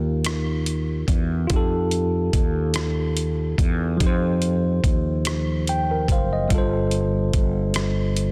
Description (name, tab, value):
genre	slow six-eight R&B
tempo	48 BPM (dotted quarters)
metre	6/8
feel	straight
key	F mixolydian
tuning	A4 = 440 Hz
part	tine electric piano	accompaniment	0.0-8.3 s	F3 to G5	-27 LUFS	equal	overdrive
part	fretless electric bass	bass	0.0-8.3 s	Gb1 to F2	-26 LUFS	equal	none
part	dusty soul sampler-style drum kit	drums	0.2-8.3 s	hi-hat, kick drum, rim click	-26 LUFS	equal	soft clipping on snare
room	light reverb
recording	dense, heavily limited modern master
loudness	-22 LUFS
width	mono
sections	0.0-8.3 A section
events	tine electric piano fill 5.3-6.5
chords	0.0 F9sus4; 6.5 G9sus4